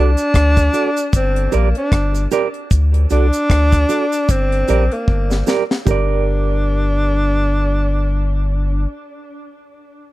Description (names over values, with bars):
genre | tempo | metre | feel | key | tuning
roots reggae | 76 BPM | 4/4 | swing 58% on 16ths | G harmonic minor | A4 = 440 Hz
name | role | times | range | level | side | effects
breathy tenor saxophone | melody | 0.0-8.9 s | Bb3 to D4 | -20 LUFS | equal | tape echo
clean electric guitar | accompaniment | 0.0-9.4 s | F#4 to D5 | -22 LUFS | right 8 dB | tremolo, tape echo
soft dub sub bass | bass | 0.0-8.9 s | G1 to D2 | -16 LUFS | equal | none
deep reggae drum kit | drums | 0.2-6.1 s | hi-hat, kick drum, rim click, snare drum, toms | -17 LUFS | equal | none
cabasa | percussion | 0.2-6.2 s | none | -33 LUFS | right 7 dB | none
room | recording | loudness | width
little or no reverb | dry, close 1970s-style studio recording | -14 LUFS | side -17 dB against mid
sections
0.0-5.9 A section; 5.9-9.0 B section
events
drum fill 5.1-5.9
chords
0.0 D; 1.1 Gm; 2.7 D; 4.3 Gm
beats
0.34 1.13 1.92 | 2.71 3.50 4.29 5.08 | 5.87 6.66 7.45 8.24